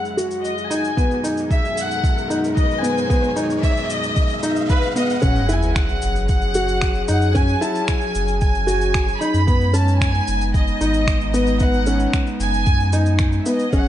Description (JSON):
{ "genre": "piano and strings electronica", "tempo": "113 BPM", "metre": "4/4", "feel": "straight", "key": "unclear", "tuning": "A4 = 440 Hz", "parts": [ { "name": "rich chamber violin section", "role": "melody", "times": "0.0-13.9 s", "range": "B4 to B5", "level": "-24 LUFS", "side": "equal", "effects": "low-pass filter, tape echo" }, { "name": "dark string quartet", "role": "sustained chords", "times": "0.0-13.9 s", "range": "F#2 to G#4", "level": "-27 LUFS", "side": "left 1 dB", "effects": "stereo widening, sidechain pumping" }, { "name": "riser and sub drop", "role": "sound effects", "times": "0.9-7.4 s", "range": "none", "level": "-29 LUFS", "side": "equal", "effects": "none" }, { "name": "electronic shaker and finger snaps", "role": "drums", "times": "0.1-13.8 s", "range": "none", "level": "-30 LUFS", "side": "equal", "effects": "none" }, { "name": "felt-muted upright piano", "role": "riff", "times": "0.2-13.9 s", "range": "B3 to F#4", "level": "-23 LUFS", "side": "equal", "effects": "tape echo" }, { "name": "electronic kick drum", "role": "drums", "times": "1.0-13.8 s", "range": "none", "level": "-19 LUFS", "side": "equal", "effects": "none" }, { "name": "warm sub bass", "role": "bass", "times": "5.2-13.9 s", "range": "F#1 to F#2", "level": "-21 LUFS", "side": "equal", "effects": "tube saturation, sidechain pumping" } ], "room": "light reverb", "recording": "dark, warm production, nothing above 10.4 kHz", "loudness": "-16 LUFS", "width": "side -12 dB against mid", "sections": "0.0-5.2 A section; 5.2-13.9 B section", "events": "build-up 0.0-5.2; riser 0.9-5.2; drop 5.2-13.9; impact 5.2-7.4", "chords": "0.0 F#sus2; 1.0 G#m/F#; 5.2 F#sus2; 9.5 G#m/F#", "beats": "0.45 | 0.98 1.51 2.04 2.57 | 3.10 3.63 4.17 4.70 | 5.23 5.76 6.29 6.82 | 7.35 7.88 8.41 8.95 | 9.48 10.01 10.54 11.07 | 11.60 12.13 12.66 13.19 | 13.72" }